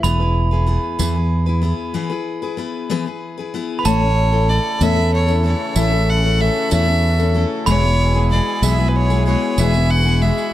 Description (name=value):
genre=indie folk with a building arrangement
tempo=63 BPM (dotted quarters)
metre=6/8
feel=straight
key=A major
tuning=A4 = 444 Hz
part: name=glockenspiel with soft plastic mallets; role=second line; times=0.0-10.5 s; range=A5 to B5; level=-25 LUFS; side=right 4 dB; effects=none
part: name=fingerpicked steel-string acoustic guitar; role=accompaniment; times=0.0-2.0 s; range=E2 to E4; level=-30 LUFS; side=left 2 dB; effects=none
part: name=picked steel-string acoustic guitar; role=accompaniment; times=0.0-10.5 s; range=E2 to B4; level=-22 LUFS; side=left 7 dB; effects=none
part: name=fingered electric bass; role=bass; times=0.0-10.3 s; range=E1 to E2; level=-16 LUFS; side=equal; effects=none
part: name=tambourine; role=percussion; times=0.0-10.5 s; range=none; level=-29 LUFS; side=right 9 dB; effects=none
part: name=rich fiddle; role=melody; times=3.8-10.5 s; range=B4 to F#5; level=-22 LUFS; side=right 1 dB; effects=digital delay
part: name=mellow brass ensemble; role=sustained chords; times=3.9-10.5 s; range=B2 to A4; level=-28 LUFS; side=right 2 dB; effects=none
room=small room ambience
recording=dark, warm production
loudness=-15 LUFS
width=side -13 dB against mid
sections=0.0-3.9 A section; 3.9-10.5 B section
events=build-up 0.0-3.9; break 2.0-3.9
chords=0.0 E; 3.9 A; 7.7 E